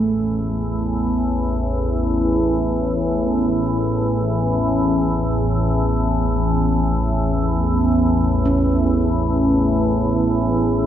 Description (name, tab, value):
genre	world meditative, free-time meditation music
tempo	free time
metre	none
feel	none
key	A major pentatonic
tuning	A4 = 441 Hz
part	organ-like drone	drone	0.0-10.9 s	A1 to E2	-17 LUFS	equal	ensemble chorus, built-in reverb, phaser
part	handpan	texture	0.0-10.9 s	A3 to C#4	-26 LUFS	right 2 dB	none
room	wet cathedral reverb, RT60 6.1 s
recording	in a vast, echoing space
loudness	-17 LUFS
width	side -10 dB against mid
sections	0.0-10.9 A section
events	none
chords	none